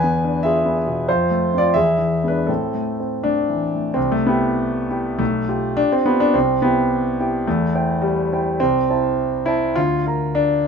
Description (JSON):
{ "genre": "classical, romantic character piece for solo piano", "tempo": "76-111 BPM", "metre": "2/4", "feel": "rubato", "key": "A minor, C major from 4.0 s", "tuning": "A4 = 439 Hz", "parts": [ { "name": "warm concert grand piano", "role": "solo", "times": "0.0-10.7 s", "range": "B1 to Bb5", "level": "-17 LUFS", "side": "equal", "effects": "none" } ], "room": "light reverb", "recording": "none", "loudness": "-17 LUFS", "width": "side -6 dB against mid", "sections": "0.0-4.0 A section; 4.0-10.7 B section", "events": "none", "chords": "0.0 E7b9; 1.1 F; 1.7 E; 2.5 Am; 4.0 C; 5.2 G7/B; 6.3 C; 7.5 C/E; 8.6 Am/C; 9.8 Bb/D" }